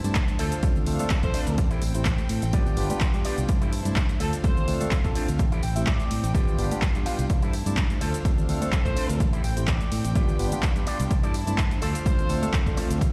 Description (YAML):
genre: filtered disco house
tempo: 126 BPM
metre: 4/4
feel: swing 54% on 16ths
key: D dorian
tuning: A4 = 442 Hz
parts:
  - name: bright tine electric piano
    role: accompaniment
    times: 0.0-13.0 s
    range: G3 to D5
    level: -35 LUFS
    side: equal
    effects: phaser, sidechain pumping
  - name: rich chamber violin section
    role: sustained chords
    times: 0.0-13.1 s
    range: C4 to A5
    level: -41 LUFS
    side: equal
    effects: sidechain pumping
  - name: electric guitar with an envelope filter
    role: riff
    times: 0.0-13.0 s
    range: D4 to G5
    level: -38 LUFS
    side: equal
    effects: spring reverb, sidechain pumping
  - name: fingered electric bass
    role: bass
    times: 0.0-13.1 s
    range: G1 to A2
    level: -30 LUFS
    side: equal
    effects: sidechain pumping
  - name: punchy analog drum machine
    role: drums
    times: 0.0-13.1 s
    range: handclaps, hi-hat, shaker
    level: -36 LUFS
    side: equal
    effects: overdrive, small room ambience
  - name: tambourine and congas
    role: percussion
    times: 0.0-13.1 s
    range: none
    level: -39 LUFS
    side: equal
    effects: sidechain pumping on perc
  - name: electronic kick drum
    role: drums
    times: 0.2-13.1 s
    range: none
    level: -26 LUFS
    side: equal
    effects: overdrive, small room ambience
  - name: warm horn section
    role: melody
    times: 0.4-4.8, 8.0-12.4 s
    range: A4 to C5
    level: -38 LUFS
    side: equal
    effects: sidechain pumping, delay
room: digital ambience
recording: played on a big sound system in a bare room, large studio reverb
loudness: -25 LUFS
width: mono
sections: 0.0-13.1 A section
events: clean electric guitar fill 5.4-6.3, 9.2-10.2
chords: 0.4 Dm7; 1.6 Am7; 2.5 G7; 3.5 C6; 4.2 Dm7; 5.4 Am7; 6.3 G7; 7.3 C6; 8.0 Dm7; 9.2 Am7; 10.2 G7; 11.1 C6; 11.8 Dm7